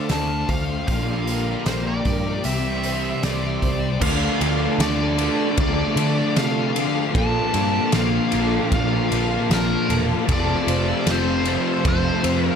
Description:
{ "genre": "rock, shoegaze and dream pop", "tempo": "77 BPM", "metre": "4/4", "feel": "straight", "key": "unclear", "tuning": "A4 = 440 Hz", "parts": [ { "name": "nasal lead guitar with a parked wah", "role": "melody", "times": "0.0-12.6 s", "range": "A4 to A5", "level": "-27 LUFS", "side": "right 1 dB", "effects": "overdrive, tape echo" }, { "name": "analog string pad", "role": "sustained chords", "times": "0.0-12.6 s", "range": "F4 to E6", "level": "-32 LUFS", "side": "equal", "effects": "ensemble chorus" }, { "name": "fingerpicked twelve-string acoustic guitar", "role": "arpeggios", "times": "0.0-12.6 s", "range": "F4 to A5", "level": "-32 LUFS", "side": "right 4 dB", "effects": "ensemble chorus, tape echo" }, { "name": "crunchy overdriven guitar", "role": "riff", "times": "0.0-12.6 s", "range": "F2 to F4", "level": "-28 LUFS", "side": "right 9 dB", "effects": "reverse reverb" }, { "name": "fuzz guitar", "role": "riff", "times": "0.0-12.6 s", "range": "F2 to D4", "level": "-26 LUFS", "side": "left 10 dB", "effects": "distortion, ensemble chorus" }, { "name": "vintage muted picked electric bass", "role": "bass", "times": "0.1-12.5 s", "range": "E1 to D3", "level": "-25 LUFS", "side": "equal", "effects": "none" }, { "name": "loose indie drum kit", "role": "drums", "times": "0.1-12.4 s", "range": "crash cymbal, hi-hat, kick drum, ride cymbal, snare drum", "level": "-25 LUFS", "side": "equal", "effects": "none" }, { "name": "distorted electric guitar", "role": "riff", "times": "4.0-12.6 s", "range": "F2 to D4", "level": "-28 LUFS", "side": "left 2 dB", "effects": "distortion" } ], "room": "small room reverb", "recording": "none", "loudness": "-18 LUFS", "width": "side -7 dB against mid", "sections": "0.0-4.0 A section; 4.0-12.6 B section", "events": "none", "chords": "0.0 Dm7; 0.9 Bb6; 2.5 Cadd9; 4.0 Dm; 7.2 Bbmaj7; 10.3 Fmaj7" }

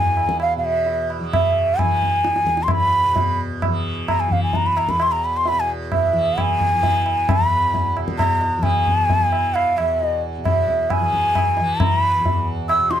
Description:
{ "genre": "indian classical, Hindustani", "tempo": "132 BPM", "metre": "5/4", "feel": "straight", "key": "E major", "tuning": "A4 = 439 Hz", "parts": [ { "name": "breathy mellow bansuri", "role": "melody", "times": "0.0-13.0 s", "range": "E5 to E6", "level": "-18 LUFS", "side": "equal", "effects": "none" }, { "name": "tanpura", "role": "drone", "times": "0.0-13.0 s", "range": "E2 to E3", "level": "-27 LUFS", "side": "equal", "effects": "none" }, { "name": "tabla", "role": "percussion", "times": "0.2-13.0 s", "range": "none", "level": "-22 LUFS", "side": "equal", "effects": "none" } ], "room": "little or no reverb", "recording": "close, detailed microphones", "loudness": "-17 LUFS", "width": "side -10 dB against mid", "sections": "0.0-13.0 A section", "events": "speeding up 0.0-13.0", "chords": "none" }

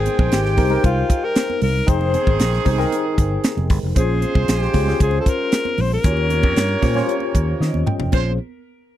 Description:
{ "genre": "polished 1980s jazz-funk pop", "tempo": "115 BPM", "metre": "4/4", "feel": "straight", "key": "Bb dorian", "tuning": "A4 = 442 Hz", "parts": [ { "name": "breathy alto saxophone", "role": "melody", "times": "0.0-7.6 s", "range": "F4 to C5", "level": "-24 LUFS", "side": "left 4 dB", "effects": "tape echo" }, { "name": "warm horn section", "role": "second line", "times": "0.0-8.3 s", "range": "Eb3 to G5", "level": "-26 LUFS", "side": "right 6 dB", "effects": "none" }, { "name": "tine electric piano", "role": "accompaniment", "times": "0.0-8.4 s", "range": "Db4 to G5", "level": "-24 LUFS", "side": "left 2 dB", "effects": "overdrive, fast stereo tremolo, analog chorus" }, { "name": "fingered electric bass", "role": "bass", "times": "0.0-8.4 s", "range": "F1 to Eb3", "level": "-20 LUFS", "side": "equal", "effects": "none" }, { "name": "tight funk drum kit", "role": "drums", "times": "0.1-8.2 s", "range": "crash cymbal, hi-hat, kick drum, snare drum, toms", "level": "-19 LUFS", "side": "equal", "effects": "none" }, { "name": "congas", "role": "percussion", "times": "0.1-8.4 s", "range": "none", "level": "-32 LUFS", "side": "right 15 dB", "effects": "none" } ], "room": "little or no reverb", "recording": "dry, close 1970s-style studio recording", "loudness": "-16 LUFS", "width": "side -12 dB against mid", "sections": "0.0-8.1 A section", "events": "tine electric piano fill 7.3-8.1; drum fill 7.6-8.1", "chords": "0.0 Abmaj7; 1.9 Fm9; 4.0 Bbm9; 6.0 Eb13; 8.1 Bbm9" }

